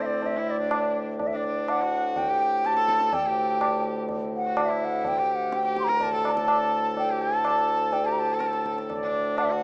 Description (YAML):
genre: indian classical, Hindustani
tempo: 125 BPM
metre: 4/4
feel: straight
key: D major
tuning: A4 = 440 Hz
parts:
  - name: bright reedy bansuri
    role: melody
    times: 0.0-9.6 s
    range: D5 to C6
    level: -25 LUFS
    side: equal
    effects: none
  - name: clear sarangi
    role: second line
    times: 0.0-9.6 s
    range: C4 to Bb4+23c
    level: -33 LUFS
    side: equal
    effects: none
  - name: pedal harmonium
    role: drone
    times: 0.0-9.6 s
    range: D2 to A2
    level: -31 LUFS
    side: equal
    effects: none
  - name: tabla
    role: percussion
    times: 0.2-9.6 s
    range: none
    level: -30 LUFS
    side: right 1 dB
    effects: none
room: moderate lush hall reverb, RT60 2.6 s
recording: rough home demo mix, small speaker sound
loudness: -22 LUFS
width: side -29 dB against mid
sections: 0.0-9.6 A section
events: none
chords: none